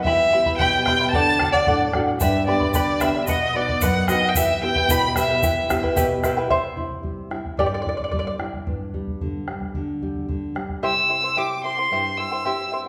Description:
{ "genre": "andean folk, Andean ensemble", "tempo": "111 BPM", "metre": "2/4", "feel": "straight", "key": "unclear", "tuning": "A4 = 440 Hz", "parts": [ { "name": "warm violin", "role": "melody", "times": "0.0-5.9, 10.8-12.7 s", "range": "D5 to E6", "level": "-23 LUFS", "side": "equal", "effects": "none" }, { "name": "charango", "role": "accompaniment", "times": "0.0-8.3, 10.8-12.9 s", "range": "E4 to B5", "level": "-27 LUFS", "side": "equal", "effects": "none" }, { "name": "nylon-string guitar", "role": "accompaniment", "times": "0.0-12.9 s", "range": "F#2 to G4", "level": "-29 LUFS", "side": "equal", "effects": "none" }, { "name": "bombo", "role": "percussion", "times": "0.0-10.8 s", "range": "none", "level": "-30 LUFS", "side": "equal", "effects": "none" }, { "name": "egg shaker", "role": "percussion", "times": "2.2-6.4 s", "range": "none", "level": "-33 LUFS", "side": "equal", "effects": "none" } ], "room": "wet large studio reverb, RT60 1.4 s", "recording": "band playing live in one room", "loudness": "-21 LUFS", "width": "mono", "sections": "0.0-6.5 A section; 6.5-10.8 B section; 10.8-12.9 C section", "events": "charango solo 6.5-10.8", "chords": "0.1 Em; 1.1 D; 2.2 G; 3.3 B; 4.4 Em; 6.5 C; 8.7 G5; 10.8 C" }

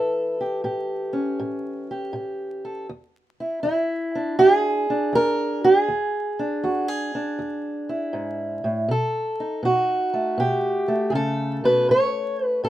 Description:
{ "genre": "acoustic country blues, solo or duo", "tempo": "80 BPM", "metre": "4/4", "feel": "swing 67% on 8ths", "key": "E mixolydian", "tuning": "A4 = 441 Hz", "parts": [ { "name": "fingerpicked steel-string acoustic guitar", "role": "solo", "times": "0.0-12.7 s", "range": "E2 to C#5", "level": "-21 LUFS", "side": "right 1 dB", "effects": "none" } ], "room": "light reverb", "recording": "minimal, uncompressed stereo recording, vinyl crackle", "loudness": "-21 LUFS", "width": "side -14 dB against mid", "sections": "0.0-12.7 A section", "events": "none", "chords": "0.0 A7; 2.9 E7; 8.9 B7; 11.9 A" }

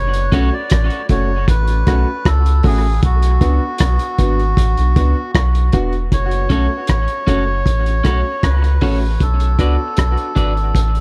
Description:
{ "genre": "dub reggae", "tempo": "78 BPM", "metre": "4/4", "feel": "straight", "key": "F# minor", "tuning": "A4 = 439 Hz", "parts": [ { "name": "melodica", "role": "melody", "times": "0.0-10.8 s", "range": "F#4 to D5", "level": "-25 LUFS", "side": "equal", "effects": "dub echo" }, { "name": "soft dub sub bass", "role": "bass", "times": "0.0-11.0 s", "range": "E1 to C#2", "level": "-18 LUFS", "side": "equal", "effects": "none" }, { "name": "cloth-damped thuddy drum kit", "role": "drums", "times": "0.1-11.0 s", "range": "hi-hat, kick drum, rim click", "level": "-20 LUFS", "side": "equal", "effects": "none" }, { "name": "electric guitar at the edge of break-up", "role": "accompaniment", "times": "0.3-0.5, 6.5-10.6 s", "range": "C#4 to D5", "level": "-28 LUFS", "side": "equal", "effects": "high-pass filter, dub echo" }, { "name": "warm upright piano", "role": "stabs", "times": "0.3-9.8 s", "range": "A3 to F#4", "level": "-27 LUFS", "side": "equal", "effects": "high-pass filter, dub echo" } ], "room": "little or no reverb", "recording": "echo-heavy mix", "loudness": "-16 LUFS", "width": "mono", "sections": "0.0-6.1 A section; 6.1-11.0 B section", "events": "break 0.0-6.1", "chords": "0.0 F#m; 3.0 Bm; 6.1 F#m; 9.2 Bm" }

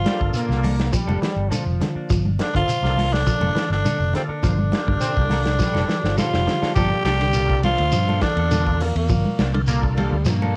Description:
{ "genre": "afrobeat", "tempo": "103 BPM", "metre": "4/4", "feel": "straight", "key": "G dorian", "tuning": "A4 = 441 Hz", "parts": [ { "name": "growling tenor saxophone", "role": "melody", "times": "0.0-9.5 s", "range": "Bb3 to G4", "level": "-26 LUFS", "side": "equal", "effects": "none" }, { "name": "trombone with bucket mute", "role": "second line", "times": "0.0-9.5 s", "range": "Bb2 to G3", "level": "-34 LUFS", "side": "equal", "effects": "cassette tape" }, { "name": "overdriven tonewheel organ", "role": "accompaniment", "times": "0.0-10.6 s", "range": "Bb3 to C5", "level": "-35 LUFS", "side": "equal", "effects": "chorus vibrato, slow rotary speaker, cassette tape" }, { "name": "fingered electric bass", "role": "bass", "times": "0.0-10.5 s", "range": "F1 to G2", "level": "-25 LUFS", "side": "equal", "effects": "none" }, { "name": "shekere", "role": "percussion", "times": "0.0-10.4 s", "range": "none", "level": "-30 LUFS", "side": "equal", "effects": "none" }, { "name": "brilliant trombone section", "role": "second line", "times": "0.1-10.6 s", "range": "F3 to C4", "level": "-31 LUFS", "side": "equal", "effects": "cassette tape" }, { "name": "warm soul drum kit", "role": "drums", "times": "0.1-10.4 s", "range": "hi-hat, kick drum, ride cymbal, snare drum", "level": "-28 LUFS", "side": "equal", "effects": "none" }, { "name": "congas", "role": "percussion", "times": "0.1-10.6 s", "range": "none", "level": "-30 LUFS", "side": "equal", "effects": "none" }, { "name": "clean electric guitar", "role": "arpeggios", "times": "0.2-10.5 s", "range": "D3 to F3", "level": "-31 LUFS", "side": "equal", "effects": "cassette tape, tape echo" }, { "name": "clean electric guitar", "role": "stabs", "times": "0.2-10.6 s", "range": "F3 to A4", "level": "-37 LUFS", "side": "equal", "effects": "none" } ], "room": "moderate small room reverb, RT60 0.5 s", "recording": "home recording on cassette", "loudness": "-21 LUFS", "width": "mono", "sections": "0.0-6.8 A section; 6.8-10.6 B section", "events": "drum fill 5.6-6.8", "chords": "0.0 Gm9" }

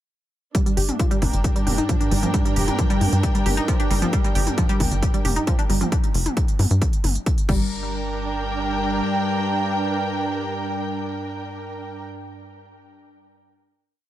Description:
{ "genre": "driving peak-time techno", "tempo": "134 BPM", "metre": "4/4", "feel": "straight", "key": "G minor", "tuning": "A4 = 440 Hz", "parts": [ { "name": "analog pluck", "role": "riff", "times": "0.5-7.9 s", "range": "F3 to G4", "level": "-27 LUFS", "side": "equal", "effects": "chorus, tube saturation, sidechain pumping, ping-pong delay" }, { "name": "analog drone", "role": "drone", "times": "0.9-12.1 s", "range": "G2", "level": "-30 LUFS", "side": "left 1 dB", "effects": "chorus, sidechain pumping" }, { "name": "electronic kick drum", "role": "drums", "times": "0.5-7.6 s", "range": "none", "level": "-21 LUFS", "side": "equal", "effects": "none" }, { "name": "techno drum kit", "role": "drums", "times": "0.5-7.6 s", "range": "crash cymbal, hi-hat, toms", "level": "-29 LUFS", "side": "equal", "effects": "sidechain pumping on hats, sidechain pumping on toms, sidechain pumping on cymbals" }, { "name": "dark studio string section", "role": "texture", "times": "0.5-12.1 s", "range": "D4 to G5", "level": "-27 LUFS", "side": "right 2 dB", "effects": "sidechain pumping" }, { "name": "tight sequencer bass", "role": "bass", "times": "0.8-9.0 s", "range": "F1 to G2", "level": "-23 LUFS", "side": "equal", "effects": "tube saturation, sidechain pumping" } ], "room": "light reverb, digital ambience", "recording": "none", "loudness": "-19 LUFS", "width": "side -13 dB against mid", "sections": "0.5-7.7 groove; 7.7-11.3 final note", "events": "none", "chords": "0.5 Gm" }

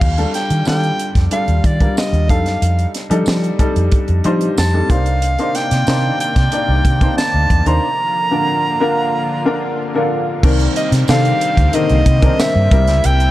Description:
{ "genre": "polished 1980s jazz-funk pop", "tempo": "92 BPM", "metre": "4/4", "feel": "straight", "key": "C dorian", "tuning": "A4 = 441 Hz", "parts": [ { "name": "breathy soprano saxophone", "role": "melody", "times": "0.0-13.3 s", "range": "D5 to Bb5", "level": "-19 LUFS", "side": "right 1 dB", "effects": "none" }, { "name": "warm baby grand piano", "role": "accompaniment", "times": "0.0-13.3 s", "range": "D3 to D5", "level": "-19 LUFS", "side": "left 2 dB", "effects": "lush chorus" }, { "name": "vintage muted fingered electric bass", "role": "bass", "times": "0.0-13.3 s", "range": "C2 to F3", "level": "-15 LUFS", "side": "equal", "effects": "none" }, { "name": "tight funk drum kit", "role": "drums", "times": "0.0-13.3 s", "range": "crash cymbal, hi-hat, kick drum, snare drum", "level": "-17 LUFS", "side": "equal", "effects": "none" }, { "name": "tambourine", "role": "percussion", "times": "0.7-12.5 s", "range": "none", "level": "-31 LUFS", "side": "right 5 dB", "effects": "none" }, { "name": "lush unison pad", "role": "sustained chords", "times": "5.2-13.3 s", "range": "C3 to D5", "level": "-25 LUFS", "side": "equal", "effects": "chorus" } ], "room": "light reverb, studio ambience", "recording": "dark, warm production", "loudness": "-13 LUFS", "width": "side -15 dB against mid", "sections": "0.0-10.4 A section; 10.4-13.3 B section", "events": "break 7.8-10.4", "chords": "0.0 Ebmaj9#11; 2.3 F13; 4.9 Cm9; 7.8 Bbmaj7/D; 10.4 Cm9; 12.7 C7" }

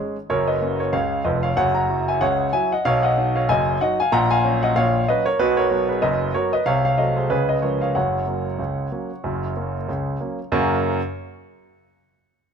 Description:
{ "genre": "ragtime piano", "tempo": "94 BPM", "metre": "2/4", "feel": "swing 57% on 16ths", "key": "F# major", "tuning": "A4 = 440 Hz", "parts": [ { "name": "clear concert grand piano", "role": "solo", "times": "0.0-11.0 s", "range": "E#1 to A#5", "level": "-19 LUFS", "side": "equal", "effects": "none" } ], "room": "light reverb", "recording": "close, detailed microphones", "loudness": "-18 LUFS", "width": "side -7 dB against mid", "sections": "0.0-10.5 A section; 10.5-11.8 B section", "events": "none", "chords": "0.3 F#; 1.6 F#5; 2.9 B; 4.1 F#/A#; 5.4 B5; 6.7 F7b9b13/C; 7.3 C#7; 7.9 F#" }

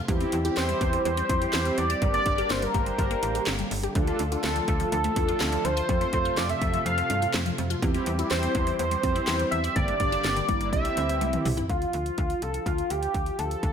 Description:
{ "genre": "synth-pop", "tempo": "124 BPM", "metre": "4/4", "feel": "straight", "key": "D minor", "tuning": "A4 = 440 Hz", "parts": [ { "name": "warm analog pad", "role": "sustained chords", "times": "0.0-13.7 s", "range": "C3 to G4", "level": "-35 LUFS", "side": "equal", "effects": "chorus" }, { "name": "resonant blip pluck", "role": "arpeggios", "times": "0.0-11.6 s", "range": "D3 to G4", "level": "-35 LUFS", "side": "left 3 dB", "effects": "phaser, tape echo, slapback echo" }, { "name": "mellow synth brass", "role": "accompaniment", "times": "0.1-11.5 s", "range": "Bb3 to C5", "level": "-32 LUFS", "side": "right 1 dB", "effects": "chorus, slapback echo" }, { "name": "slap-like FM bass", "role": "bass", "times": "0.1-13.7 s", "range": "G1 to G2", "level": "-30 LUFS", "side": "equal", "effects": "none" }, { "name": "house drum kit", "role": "drums", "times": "0.1-13.7 s", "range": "handclaps, hi-hat, kick drum, snare drum, toms", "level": "-29 LUFS", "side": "equal", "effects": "none" }, { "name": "octave-doubled lead", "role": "melody", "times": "0.6-13.7 s", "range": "F4 to F5", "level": "-27 LUFS", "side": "equal", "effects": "chorus, phaser, tape echo, slapback echo" } ], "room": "wet recital hall reverb, RT60 1.4 s", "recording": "big arena sound", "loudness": "-23 LUFS", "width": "side -8 dB against mid", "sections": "0.0-11.7 A section; 11.7-13.7 B section", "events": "drum fill 11.2-11.7", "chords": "0.1 C/E; 2.0 Gm; 4.0 Dm; 5.9 F; 7.8 C/E; 9.8 Gm; 10.7 C; 11.7 Dm" }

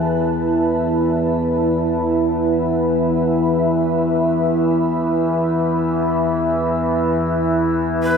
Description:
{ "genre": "dark ambient drone", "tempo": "free time", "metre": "none", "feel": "none", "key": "unclear", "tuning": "A4 = 440 Hz", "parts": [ { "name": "dark analog pad", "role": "sustained chords", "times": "0.0-8.2 s", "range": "E4 to A5", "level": "-18 LUFS", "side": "right 1 dB", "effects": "chorus, shimmer reverb" }, { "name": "overtone-sweeping drone", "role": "drone", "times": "0.0-8.2 s", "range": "E2 to E3", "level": "-20 LUFS", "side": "left 1 dB", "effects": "chorus, built-in reverb" }, { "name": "breathy bright shakuhachi", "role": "melody", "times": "8.0-8.2 s", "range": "B4", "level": "-29 LUFS", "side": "equal", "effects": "none" } ], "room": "wet cathedral reverb, RT60 7.2 s", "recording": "in a vast, echoing space", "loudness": "-16 LUFS", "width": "side -6 dB against mid", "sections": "0.0-8.2 A section", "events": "none", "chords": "0.0 E5" }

